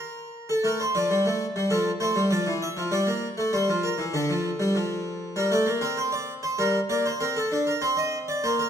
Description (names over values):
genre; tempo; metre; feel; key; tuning
classical, baroque-style two-part invention for harpsichord; 98 BPM; 4/4; straight; G minor; A4 = 440 Hz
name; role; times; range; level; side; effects
harpsichord; solo; 0.0-8.7 s; D3 to E5; -23 LUFS; equal; none
room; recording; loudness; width
wet recital hall reverb, RT60 1.5 s; none; -23 LUFS; side -8 dB against mid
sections
0.0-8.7 A section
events
none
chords
0.5 Dm; 1.7 Dm/F; 2.9 Gm; 4.1 Dm; 5.4 Gm; 7.8 Cm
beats
| 0.49 1.10 1.71 2.32 | 2.93 3.54 4.14 4.75 | 5.37 5.98 6.59 7.21 | 7.83 8.44